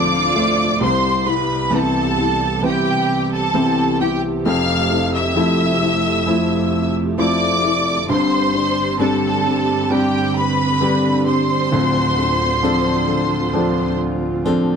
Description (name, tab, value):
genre	pop ballad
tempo	66 BPM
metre	4/4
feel	straight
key	C major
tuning	A4 = 440 Hz
part	rich studio violin section	melody	0.0-14.0 s	G4 to F6	-19 LUFS	equal	slapback echo
part	rich studio cello section	second line	0.0-0.8 s	D4 to F4	-29 LUFS	left 3 dB	none
part	clear baby grand piano	accompaniment	0.0-14.8 s	D1 to E4	-21 LUFS	right 3 dB	none
part	warm studio string section	sustained chords	0.0-14.8 s	C2 to G4	-24 LUFS	right 4 dB	none
part	flamenco guitar	arpeggios	0.0-14.8 s	G2 to A4	-22 LUFS	left 8 dB	none
room	light reverb, small room reverb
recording	dry, close 1970s-style studio recording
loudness	-15 LUFS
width	side -6 dB against mid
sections	0.8-14.8 A section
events	none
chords	0.0 Dm7; 0.8 Cmaj7; 4.4 Fmaj7; 8.1 Gsus4; 11.7 Dm7